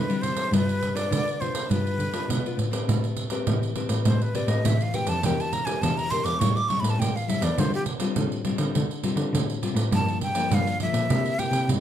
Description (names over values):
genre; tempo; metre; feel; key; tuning
samba and choro; 102 BPM; 4/4; straight; A minor; A4 = 440 Hz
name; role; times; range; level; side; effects
breathy jazz flute; melody; 0.0-11.7 s; G4 to D6; -28 LUFS; equal; none
nylon-string guitar; accompaniment; 0.0-11.8 s; G2 to B4; -30 LUFS; left 5 dB; none
dark cello; bass; 0.0-11.8 s; E2 to D3; -26 LUFS; equal; none
pandeiro; percussion; 0.1-11.8 s; none; -28 LUFS; right 6 dB; none
room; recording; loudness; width
light reverb; none; -22 LUFS; side -10 dB against mid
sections
0.0-2.9 A section; 2.9-11.8 B section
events
flute solo 2.9-11.8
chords
0.0 Am7 (rootless); 0.5 G7; 2.9 Am9; 5.2 Em7b5; 6.4 A7; 7.6 Dm7; 9.9 Gm7; 11.1 C7